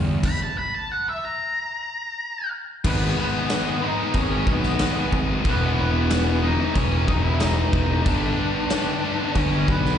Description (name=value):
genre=quiet-loud alternative rock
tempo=92 BPM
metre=4/4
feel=straight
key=unclear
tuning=A4 = 439 Hz
part: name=thick fuzz guitar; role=riff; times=0.0-10.0 s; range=G2 to E4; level=-29 LUFS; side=left 8 dB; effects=distortion, slapback echo
part: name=fuzz picked electric bass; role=bass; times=0.0-10.0 s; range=E1 to E2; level=-23 LUFS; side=equal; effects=overdrive
part: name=big rock drum kit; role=drums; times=0.2-9.9 s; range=crash cymbal, kick drum, snare drum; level=-26 LUFS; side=equal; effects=none
part: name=octave-fuzz lead guitar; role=melody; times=0.3-10.0 s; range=B3 to B5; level=-26 LUFS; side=equal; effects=distortion, slapback echo
part: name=mellow tonewheel organ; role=sustained chords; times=2.8-10.0 s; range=B4 to D#6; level=-34 LUFS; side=right 1 dB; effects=slow rotary speaker
part: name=high-gain distorted guitar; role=riff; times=2.8-10.0 s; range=E2 to G#3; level=-28 LUFS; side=equal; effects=distortion, slapback echo
room=studio reverb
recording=live gig heard through the venue's PA, recital hall reverb, nothing above 10.3 kHz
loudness=-20 LUFS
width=side -9 dB against mid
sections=0.0-2.9 A section; 2.9-10.0 B section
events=lead electric guitar solo 0.0-2.9; stop 0.2-2.9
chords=0.2 N.C.; 2.9 G#m; 5.5 E; 8.1 G